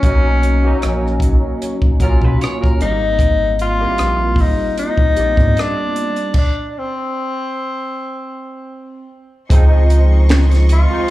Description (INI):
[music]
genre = R&B, neo-soul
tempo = 76 BPM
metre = 4/4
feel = swing 54% on 16ths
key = unclear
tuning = A4 = 440 Hz
[part]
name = warm tenor saxophone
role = melody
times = 0.0-11.1 s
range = C4 to F4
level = -20 LUFS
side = left 2 dB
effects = plate reverb, slapback echo
[part]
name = barky tine electric piano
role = accompaniment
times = 0.0-11.1 s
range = F3 to D5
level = -21 LUFS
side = right 1 dB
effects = overdrive, ensemble chorus, plate reverb, slapback echo
[part]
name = rubbery square bass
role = bass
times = 0.0-10.9 s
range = Ab1 to Cb3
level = -13 LUFS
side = equal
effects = none
[part]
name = compact cocktail drum kit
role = drums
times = 0.0-10.9 s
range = crash cymbal, finger snaps, hi-hat, kick drum, rim click, snare drum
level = -16 LUFS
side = equal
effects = none
[part]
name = electric guitar at the edge of break-up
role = second line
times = 2.0-3.0 s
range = Bb4 to Db5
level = -28 LUFS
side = right 1 dB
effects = vibrato effect, plate reverb, slapback echo
[part]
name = rich studio string section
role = sustained chords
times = 9.5-11.1 s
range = F4 to Db6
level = -28 LUFS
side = left 2 dB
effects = none
[sound]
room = light reverb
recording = live gig heard through the venue's PA, club reverb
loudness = -13 LUFS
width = side -16 dB against mid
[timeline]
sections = 0.0-9.5 A section; 9.5-11.1 B section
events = stop 6.3-9.5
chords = 0.0 Cbmaj9; 2.8 Abmaj9; 6.3 N.C.; 9.5 Dbmaj9